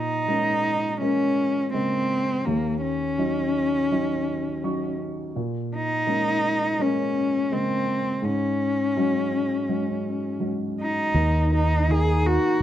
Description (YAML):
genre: acoustic folk-pop ballad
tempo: 83 BPM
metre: 4/4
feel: straight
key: Bb minor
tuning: A4 = 442 Hz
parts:
  - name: warm cello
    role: melody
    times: 0.0-12.6 s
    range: Bb3 to Ab4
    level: -24 LUFS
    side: left 1 dB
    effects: plate reverb
  - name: warm upright piano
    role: accompaniment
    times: 0.0-12.6 s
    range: Eb2 to Db6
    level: -27 LUFS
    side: right 1 dB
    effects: none
  - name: breathy clarinet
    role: second line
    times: 11.1-12.6 s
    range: Eb4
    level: -27 LUFS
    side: left 4 dB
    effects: none
  - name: fingered electric bass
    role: bass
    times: 11.1-12.6 s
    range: Eb2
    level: -21 LUFS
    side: equal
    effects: none
room: light reverb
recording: none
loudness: -22 LUFS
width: side -11 dB against mid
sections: 0.0-11.2 A section; 11.2-12.6 B section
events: none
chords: 0.0 Bbm7; 2.5 Ebm7; 5.3 Bbm7; 8.2 Ab7sus4; 11.2 Eb5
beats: 0.28 1.01 1.74 | 2.46 3.19 3.91 4.63 | 5.35 6.06 6.79 7.51 | 8.23 8.96 9.69 10.42 | 11.16 11.89 12.62